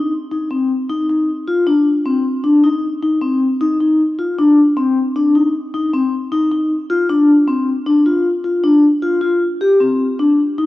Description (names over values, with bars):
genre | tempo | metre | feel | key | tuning
progressive instrumental, progressive | 155 BPM | 7/4 | straight | unclear | A4 = 441 Hz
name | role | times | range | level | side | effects
vibraphone with soft mallets | solo | 0.0-10.7 s | C4 to G4 | -13 LUFS | left 2 dB | cassette tape
room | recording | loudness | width
moderate lush hall reverb, RT60 2.7 s | home recording on cassette | -13 LUFS | side -16 dB against mid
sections
0.0-9.8 A section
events
none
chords
none